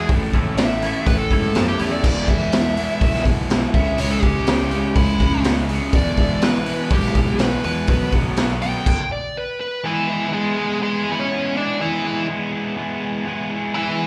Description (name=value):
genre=quiet-loud alternative rock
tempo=123 BPM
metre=4/4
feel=straight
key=E major, E mixolydian from 9.9 s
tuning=A4 = 438 Hz
part: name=nasal lead guitar with a parked wah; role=melody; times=0.0-14.1 s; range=E3 to G5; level=-26 LUFS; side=equal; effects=overdrive, slapback echo, tape echo
part: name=twangy electric guitar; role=arpeggios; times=0.0-2.0 s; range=E3 to E4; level=-32 LUFS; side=equal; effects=analog chorus, slapback echo
part: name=cranked stack guitar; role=riff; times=0.0-14.1 s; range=E2 to G#4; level=-28 LUFS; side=equal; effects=overdrive, slapback echo
part: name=overdriven semi-hollow guitar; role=riff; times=0.0-8.9 s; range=A2 to E4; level=-30 LUFS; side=equal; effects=spring reverb, slapback echo
part: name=fuzz fingered electric bass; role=bass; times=0.0-8.7 s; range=E1 to E3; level=-27 LUFS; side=equal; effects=overdrive
part: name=raw garage drum kit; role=drums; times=0.1-9.0 s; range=crash cymbal, hi-hat, kick drum, snare drum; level=-22 LUFS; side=equal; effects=none
room=small room reverb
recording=live gig heard through the venue's PA, club reverb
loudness=-20 LUFS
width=mono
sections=0.0-9.9 A section; 9.9-14.1 B section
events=lead electric guitar solo 0.0-9.9; stop 8.9-9.9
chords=0.1 A; 2.0 E; 3.7 C#m; 5.9 E; 7.9 B; 9.9 E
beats=| 0.10 0.59 1.07 1.56 | 2.04 2.53 3.02 3.50 | 3.99 4.48 4.96 5.45 | 5.94 6.43 6.92 7.41 | 7.90 8.38 8.87 9.36 | 9.85 10.34 10.83 11.32 | 11.81 12.29 12.78 13.27 | 13.76